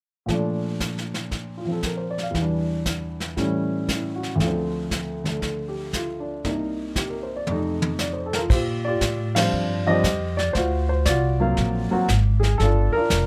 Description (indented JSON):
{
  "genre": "jazz piano trio",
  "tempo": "117 BPM",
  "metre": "4/4",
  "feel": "swing 67% on 8ths",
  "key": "Bb major",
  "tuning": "A4 = 436 Hz",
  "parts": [
    { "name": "warm baby grand piano", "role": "melody", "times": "0.3-13.3 s", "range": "C2 to F5", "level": "-26 LUFS", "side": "equal", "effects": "none" },
    { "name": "vintage brush drum kit", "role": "drums", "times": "0.3-13.3 s", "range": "brushed snare drum, crash cymbal, hi-hat, kick drum, ride cymbal, snare drum, toms", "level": "-29 LUFS", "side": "equal", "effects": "none" },
    { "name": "upright bass", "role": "bass", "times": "8.5-13.3 s", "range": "F1 to Bb2", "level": "-25 LUFS", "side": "equal", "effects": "none" }
  ],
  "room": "light reverb",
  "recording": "none",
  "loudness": "-24 LUFS",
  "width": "mono",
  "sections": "0.3-8.5 A section; 8.5-13.3 B section",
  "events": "drum fill 7.5-8.5; band accent 9.3",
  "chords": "0.3 Bbmaj7; 2.3 Em7; 3.4 A7; 4.4 Dm7; 6.4 Cm7; 7.5 F7; 8.5 Bb69; 10.5 D7alt; 12.6 Gm7"
}